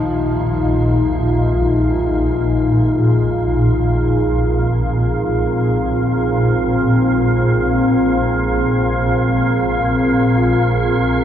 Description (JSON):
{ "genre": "dark ambient drone", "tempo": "free time", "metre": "none", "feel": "none", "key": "unclear", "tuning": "A4 = 442 Hz", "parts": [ { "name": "warm bass clarinet", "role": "melody", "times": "0.0-3.5 s", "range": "C3 to F3", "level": "-36 LUFS", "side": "equal", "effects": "none" }, { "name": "deep dark ambient pad", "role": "sustained chords", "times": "0.0-11.2 s", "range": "C4 to Ab4", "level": "-17 LUFS", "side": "left 1 dB", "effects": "chorus, built-in reverb" }, { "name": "old church bells", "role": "arpeggios", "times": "0.0-1.2 s", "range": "none", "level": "barely audible", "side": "none", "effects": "none" }, { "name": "swarming drone", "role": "drone", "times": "0.0-11.2 s", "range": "Bb1 to Bb2", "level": "-17 LUFS", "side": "equal", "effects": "built-in reverb" }, { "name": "wind-like tuned noise texture", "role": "texture", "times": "0.0-11.2 s", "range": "Bb4", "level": "-30 LUFS", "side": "right 3 dB", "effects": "built-in reverb" } ], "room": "wet huge ambient reverb, RT60 9.7 s", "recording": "none", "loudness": "-14 LUFS", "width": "side -10 dB against mid", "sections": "0.0-11.2 A section", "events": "fade-in on synth texture 0.0-11.2", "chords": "0.0 Ab" }